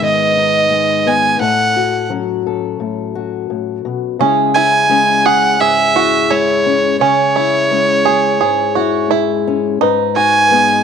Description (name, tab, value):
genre	acoustic folk duo or small band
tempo	86 BPM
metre	4/4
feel	straight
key	C# minor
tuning	A4 = 440 Hz
part	warm fiddle	melody	0.0-10.8 s	C#5 to G#5	-13 LUFS	right 2 dB	none
part	fingerpicked old ladder-braced acoustic guitar	accompaniment	0.0-10.8 s	G#2 to B4	-17 LUFS	left 8 dB	none
part	bluegrass banjo	arpeggios	4.2-10.8 s	C#4 to G#4	-17 LUFS	right 11 dB	none
room	moderate echo chamber reverb, RT60 2.2 s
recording	1960s-style stereo with parts hard left and right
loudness	-12 LUFS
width	side -7 dB against mid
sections	0.0-10.8 A section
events	none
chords	0.0 G#m; 1.4 F#m/A; 4.2 C#m; 9.8 G#m